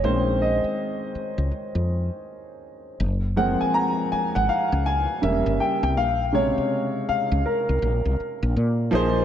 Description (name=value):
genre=R&B, neo-soul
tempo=81 BPM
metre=4/4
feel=swing 63% on 16ths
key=Bb minor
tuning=A4 = 441 Hz
part: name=warm concert grand piano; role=accompaniment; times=0.0-9.2 s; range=C3 to Bb5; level=-23 LUFS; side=equal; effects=wide subtle chorus
part: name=woody fretless electric bass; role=bass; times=0.0-9.2 s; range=E1 to Bb2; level=-24 LUFS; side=equal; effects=analog chorus
room=wet lush hall reverb, RT60 2.7 s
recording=dreamy mix soaked in reverb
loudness=-21 LUFS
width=side -10 dB against mid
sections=0.0-8.9 A section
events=grand piano solo 0.0-8.9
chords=0.0 Bbm11; 3.0 Gbmaj9#11; 5.2 Edim7; 6.0 Bbm9